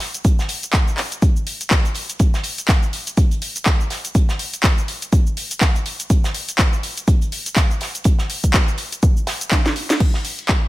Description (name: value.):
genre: house.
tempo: 123 BPM.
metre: 4/4.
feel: swing 58% on 16ths.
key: none.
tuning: none.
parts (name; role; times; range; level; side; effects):
house drum kit; drums; 0.0-10.6 s; crash cymbal, handclaps, hi-hat, shaker, snare drum; -22 LUFS; left 1 dB; overdrive, studio reverb.
modern studio drum kit; drums; 0.0-10.6 s; hi-hat, snare drum; -30 LUFS; right 2 dB; high-pass filter on hats, studio reverb, high-pass filter on snare, high-pass filter on room.
electronic kick drum; drums; 0.2-10.6 s; none; -16 LUFS; equal; overdrive, studio reverb.
room: small room ambience.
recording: none.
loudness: -16 LUFS.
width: side -17 dB against mid.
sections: 0.0-10.0 A section.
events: drop 0.0-10.0; drum fill 9.5-10.0.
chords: none.